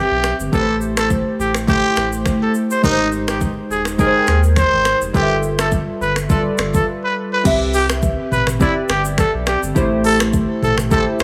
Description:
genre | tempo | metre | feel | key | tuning
afrobeats | 104 BPM | 4/4 | swing 55% on 16ths | C major | A4 = 440 Hz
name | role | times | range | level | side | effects
growling trumpet | melody | 0.0-11.2 s | Eb4 to C5 | -21 LUFS | equal | tape echo
glassy digital keys | accompaniment | 0.0-11.2 s | G3 to G5 | -23 LUFS | equal | chorus
saturated sub bass | bass | 0.1-11.2 s | Eb1 to Eb2 | -24 LUFS | equal | none
afro-pop drum kit | drums | 0.2-11.2 s | crash cymbal, finger snaps, hi-hat, kick drum, rim click, shaker, toms | -23 LUFS | equal | none
room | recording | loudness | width
light reverb | small room ambience | -17 LUFS | mono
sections
0.0-7.5 A section; 7.5-11.2 B section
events
break 6.9-7.5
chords
0.0 Cmaj7; 0.5 Am7; 2.8 Abmaj7; 5.1 G13; 7.5 Cmaj7; 9.8 Am7

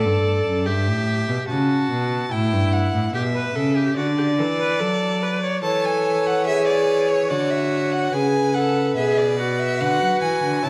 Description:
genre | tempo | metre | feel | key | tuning
classical, baroque-style fugue for string quartet | 72 BPM | 4/4 | straight | unclear | A4 = 440 Hz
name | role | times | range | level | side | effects
warm violin | second line | 0.0-10.7 s | B4 to A5 | -28 LUFS | equal | none
rich viola | accompaniment | 0.0-10.7 s | E4 to C#5 | -26 LUFS | equal | none
rich cello | bass | 0.0-10.7 s | F#2 to F#3 | -25 LUFS | equal | none
rich violin | melody | 5.6-10.7 s | C#5 to A5 | -27 LUFS | equal | none
room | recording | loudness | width
wet recital hall reverb, RT60 1.4 s | vinyl crackle | -21 LUFS | mono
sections
0.0-10.7 A section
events
none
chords
0.0 D; 0.7 Em/G; 4.0 D; 5.6 A/E; 7.3 Bm/D; 9.0 E7/B

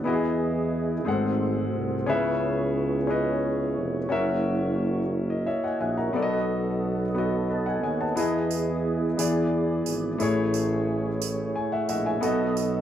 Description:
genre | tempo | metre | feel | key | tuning
slow gospel | 59 BPM (dotted quarters) | 6/8 | straight | E major | A4 = 442 Hz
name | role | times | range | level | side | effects
warm concert grand piano | accompaniment | 0.0-12.8 s | G#2 to A#5 | -27 LUFS | left 2 dB | none
percussive tonewheel organ | sustained chords | 0.0-12.8 s | G#3 to A5 | -28 LUFS | right 2 dB | slow rotary speaker, chorus vibrato
breathy tuba | bass | 0.0-12.8 s | F1 to E2 | -29 LUFS | equal | none
tambourine | percussion | 8.2-12.8 s | none | -35 LUFS | right 9 dB | none
room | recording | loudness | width
light reverb | band playing live in one room | -23 LUFS | side -10 dB against mid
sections
0.0-12.8 A section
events
tonewheel organ fill 7.2-8.2; grand piano fill 11.2-12.2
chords
0.0 Emaj7; 1.1 G#7b9; 2.1 C#m7; 4.1 F#7; 6.1 B7; 8.2 Emaj7; 9.2 E7; 10.2 Amaj7; 12.2 B7

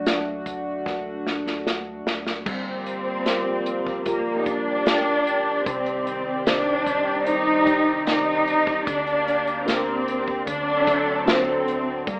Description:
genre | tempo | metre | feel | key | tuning
pop ballad | 75 BPM | 4/4 | straight | G minor | A4 = 439 Hz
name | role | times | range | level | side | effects
tine electric piano | accompaniment | 0.0-12.2 s | C3 to D5 | -30 LUFS | equal | none
chorused pulse-width pad | sustained chords | 0.0-12.2 s | Eb3 to D5 | -28 LUFS | equal | none
round analog bass | bass | 0.0-12.2 s | G1 to D2 | -48 LUFS | equal | none
unplugged drum kit | drums | 0.1-12.2 s | crash cymbal, hi-hat, kick drum, snare drum | -25 LUFS | equal | none
warm studio cello section | second line | 2.5-12.2 s | Bb3 to Eb4 | -22 LUFS | equal | tape echo
room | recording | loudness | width
wet studio ambience, RT60 0.5 s | rough home demo mix, AM radio sound | -20 LUFS | side -32 dB against mid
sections
0.0-2.5 A section; 2.5-12.2 B section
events
tine electric piano solo 0.0-2.5; drum fill 0.9-2.5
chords
0.0 D; 2.5 Gm7; 5.7 Cmadd9; 8.9 Gm/D; 10.5 D7

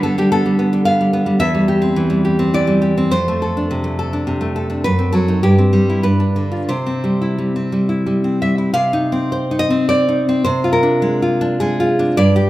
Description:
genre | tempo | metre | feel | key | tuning
romantic piece for solo classical guitar | 86-112 BPM | 3/4 | rubato | C major, C minor from 8.7 s | A4 = 439 Hz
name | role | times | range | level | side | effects
nylon-string guitar | solo | 0.0-12.5 s | E2 to F5 | -14 LUFS | equal | none
room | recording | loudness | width
wet recital hall reverb, RT60 1.6 s | recorded in a church or concert hall | -14 LUFS | side -16 dB against mid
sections
0.0-8.7 A section; 8.7-12.5 B section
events
none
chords
0.0 G7/D; 1.4 C/E; 3.1 Dm7/F; 4.8 F#dim7; 5.4 C/G; 6.0 G7; 6.7 C; 8.7 Cm; 10.4 Ddim/C

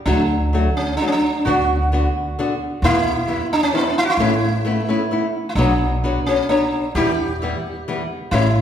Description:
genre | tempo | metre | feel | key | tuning
mexican folk, mariachi | 131 BPM | 3/4 | rubato | D major | A4 = 439 Hz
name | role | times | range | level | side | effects
sitar | melody | 0.1-8.6 s | B3 to G4 | -21 LUFS | right 1 dB | none
nylon-string guitar | accompaniment | 0.1-8.5 s | E2 to C#5 | -20 LUFS | left 2 dB | none
upright bass | bass | 0.1-8.6 s | A1 to E2 | -22 LUFS | equal | none
room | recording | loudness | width
wet recital hall reverb, RT60 1.6 s | recorded in a church or concert hall | -17 LUFS | side -9 dB against mid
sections
0.1-8.6 A section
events
none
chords
0.1 D; 1.5 Bm/D; 2.8 Em; 4.2 Aadd9; 5.6 Bmadd9; 7.0 Em

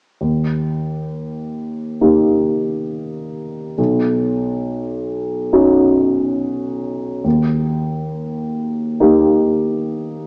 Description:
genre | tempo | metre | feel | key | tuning
classical | 68 BPM | 4/4 | rubato | unclear | A4 = 440 Hz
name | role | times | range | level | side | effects
dark concert grand piano | accompaniment | 0.2-10.3 s | B1 to G4 | -15 LUFS | equal | none
room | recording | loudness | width
moderate scoring stage reverb, RT60 1.9 s | small speaker sound | -15 LUFS | side -40 dB against mid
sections
0.2-10.3 A section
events
none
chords
0.2 Eb; 3.8 Badd9; 7.2 Eb

